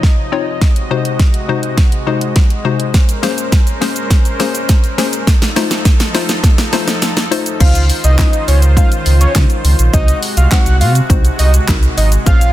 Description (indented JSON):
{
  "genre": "dance-pop",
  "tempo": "103 BPM",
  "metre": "4/4",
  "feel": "straight",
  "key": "Db major",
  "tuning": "A4 = 440 Hz",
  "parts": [
    { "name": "hollow square pluck", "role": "accompaniment", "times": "0.0-12.5 s", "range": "C3 to Db5", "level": "-20 LUFS", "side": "left 7 dB", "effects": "chorus, sidechain pumping" },
    { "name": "soft supersaw", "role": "sustained chords", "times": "0.0-12.5 s", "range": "C3 to Eb5", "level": "-22 LUFS", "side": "equal", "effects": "sidechain pumping" },
    { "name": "pop drum kit", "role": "drums", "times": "0.0-12.5 s", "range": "crash cymbal, handclaps, hi-hat, kick drum, shaker, snare drum", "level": "-12 LUFS", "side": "equal", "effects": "soft clipping on snare" },
    { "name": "fat analog lead", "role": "melody", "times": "7.6-12.5 s", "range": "Db5 to Gb5", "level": "-20 LUFS", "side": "equal", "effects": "none" },
    { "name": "sub bass with octave", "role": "bass", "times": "7.6-12.5 s", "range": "Ab1 to Db3", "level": "-11 LUFS", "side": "equal", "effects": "sidechain pumping" }
  ],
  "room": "light reverb",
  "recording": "dense, heavily limited modern master",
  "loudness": "-10 LUFS",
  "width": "side -14 dB against mid",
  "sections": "0.0-7.6 A section; 7.6-12.5 B section",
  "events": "build-up 0.0-7.6; drum fill 0.0-7.6; drop 7.6-12.5",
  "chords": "0.0 Dbmaj9; 0.6 Ab7/C; 2.9 Bbm9; 5.3 F7; 7.6 Dbmaj9; 9.9 Ab7/C"
}